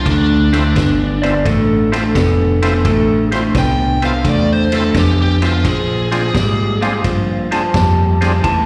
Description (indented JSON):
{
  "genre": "electric blues shuffle",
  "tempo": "86 BPM",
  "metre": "4/4",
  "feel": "swing 68% on 8ths",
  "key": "D minor",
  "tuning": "A4 = 441 Hz",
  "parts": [
    { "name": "biting overdriven guitar", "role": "melody", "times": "0.0-7.0 s", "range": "D4 to G5", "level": "-22 LUFS", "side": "equal", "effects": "none" },
    { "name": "electric guitar through a small old amp", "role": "riff", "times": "0.0-8.7 s", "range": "A2 to B3", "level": "-20 LUFS", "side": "equal", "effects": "none" },
    { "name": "fingered electric bass", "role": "bass", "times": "0.0-8.7 s", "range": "F1 to Bb2", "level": "-19 LUFS", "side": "equal", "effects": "none" },
    { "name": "vintage drum kit", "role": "drums", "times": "0.1-8.7 s", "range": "kick drum, ride cymbal, snare drum", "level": "-24 LUFS", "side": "equal", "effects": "none" },
    { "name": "overdriven tonewheel organ", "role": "accompaniment", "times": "0.5-8.3 s", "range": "C4 to C5", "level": "-26 LUFS", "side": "equal", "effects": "chorus vibrato, slapback echo" },
    { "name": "electric slide guitar", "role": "second line", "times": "1.2-8.7 s", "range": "A4 to A5", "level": "-23 LUFS", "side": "equal", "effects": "slapback echo" }
  ],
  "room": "light reverb, small room ambience",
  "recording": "live gig heard through the venue's PA, recital hall reverb",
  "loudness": "-15 LUFS",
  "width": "mono",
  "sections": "0.0-8.7 A section",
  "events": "none",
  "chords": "0.1 Dm9; 5.6 Bb7",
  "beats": "| 0.06 0.76 1.46 2.15 | 2.85 3.55 4.25 4.95 | 5.65 6.35 7.05 7.74 | 8.44"
}